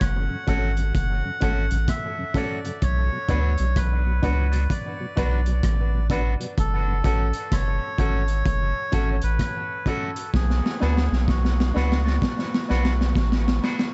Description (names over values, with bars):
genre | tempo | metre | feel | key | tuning
dub reggae | 64 BPM | 4/4 | swing 62% on 16ths | F# minor | A4 = 438 Hz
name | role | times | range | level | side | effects
melodica | melody | 0.0-13.1 s | F#4 to F#5 | -33 LUFS | equal | dub echo
soft dub sub bass | bass | 0.0-13.6 s | F#1 to D2 | -24 LUFS | equal | none
crunchy breakbeat drum kit | drums | 0.0-13.9 s | hi-hat, kick drum, rim click, snare drum | -28 LUFS | equal | none
mellow tonewheel organ | accompaniment | 0.3-6.9 s | F#2 to F#4 | -38 LUFS | equal | none
electric guitar with an envelope filter | accompaniment | 0.5-13.9 s | F#3 to F#4 | -38 LUFS | equal | high-pass filter, dub echo
warm upright piano | stabs | 0.5-13.8 s | C#4 to B4 | -36 LUFS | equal | high-pass filter, dub echo
room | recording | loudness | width
small room ambience | echo-heavy mix, nothing above 7.9 kHz | -23 LUFS | mono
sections
0.0-13.9 A section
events
drum fill 10.3-13.9; filter sweep 10.3-13.9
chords
0.0 F#m; 2.8 Bm; 6.6 F#m; 10.3 Bm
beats
0.01 0.94 1.88 | 2.82 3.76 4.70 5.64 | 6.58 7.52 8.46 9.40 | 10.34 11.28 12.21 13.15